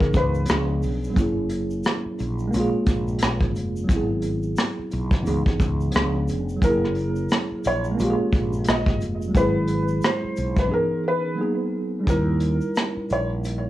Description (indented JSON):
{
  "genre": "lo-fi hip hop",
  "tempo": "88 BPM",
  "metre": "4/4",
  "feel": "swing 58% on 16ths",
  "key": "G# minor",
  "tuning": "A4 = 444 Hz",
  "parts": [
    { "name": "felt-muted upright piano", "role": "melody", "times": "0.0-0.5, 6.6-13.3 s", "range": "A#4 to D#5", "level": "-26 LUFS", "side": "left 1 dB", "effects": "analog delay" },
    { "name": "mellow tine electric piano", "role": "accompaniment", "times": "0.0-13.7 s", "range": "E3 to A#4", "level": "-25 LUFS", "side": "right 1 dB", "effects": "medium stereo tremolo" },
    { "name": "mellow fretless electric bass", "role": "bass", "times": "0.0-13.7 s", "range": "E#1 to C#3", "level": "-26 LUFS", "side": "equal", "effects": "none" },
    { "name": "vintage brush drum kit", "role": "drums", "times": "0.0-13.6 s", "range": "hi-hat, kick drum, rim click", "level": "-23 LUFS", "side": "equal", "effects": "none" },
    { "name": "egg shaker", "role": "percussion", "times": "0.1-13.6 s", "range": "none", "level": "-51 LUFS", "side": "left 5 dB", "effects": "none" }
  ],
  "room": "moderate studio reverb, RT60 0.6 s",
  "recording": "worn, warbling old tape, cassette tape, warbly pitch drift, small room ambience",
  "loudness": "-20 LUFS",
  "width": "side -14 dB against mid",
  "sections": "0.0-12.1 A section; 12.1-13.7 B section",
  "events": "break 10.7-12.1",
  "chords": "0.5 C#7b9; 1.2 F#9; 2.5 A#m7; 3.9 G#7alt; 5.3 C#m7; 5.9 C#7b9; 6.6 F#9; 8.0 A#m7; 9.3 G#7alt; 10.7 C#m7; 11.4 G#m7; 12.1 D#7b9"
}